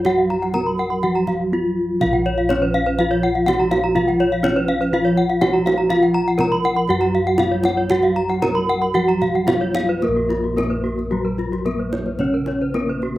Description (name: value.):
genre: Balinese gamelan.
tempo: 110-123 BPM.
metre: 4/4.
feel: straight.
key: Bb pelog.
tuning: A4 = 440 Hz.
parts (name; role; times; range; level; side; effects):
gamelan-type bronze metallophone; melody; 0.0-13.2 s; Gb3 to Bb4; -21 LUFS; equal; none.
gamelan-type bronze metallophone; accompaniment; 0.0-13.2 s; Db3 to Bb3; -26 LUFS; right 1 dB; none.
gamelan-type bronze metallophone; arpeggios; 0.0-13.2 s; Gb4 to Cb6+35c; -27 LUFS; right 4 dB; slapback echo.
gamelan-type bossed gongs; bass; 0.0-13.2 s; Bb1 to Bb4; -23 LUFS; equal; none.
kendang; percussion; 0.0-13.2 s; none; -28 LUFS; right 2 dB; none.
gamelan-type bronze metallophone; arpeggios; 0.1-12.9 s; F4 to Bb5; -23 LUFS; left 3 dB; slapback echo.
room: little or no reverb.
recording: recorded outdoors, with no room sound.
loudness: -16 LUFS.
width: side -15 dB against mid.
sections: 0.0-10.0 A section; 10.0-13.2 B section.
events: none.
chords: none.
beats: | 0.06 0.55 1.03 1.52 | 2.01 2.49 2.98 3.47 | 3.96 4.44 4.93 5.42 | 5.90 6.39 6.89 7.39 | 7.91 8.42 8.95 9.48 | 10.02 10.57 11.12 11.66 | 12.21 12.75.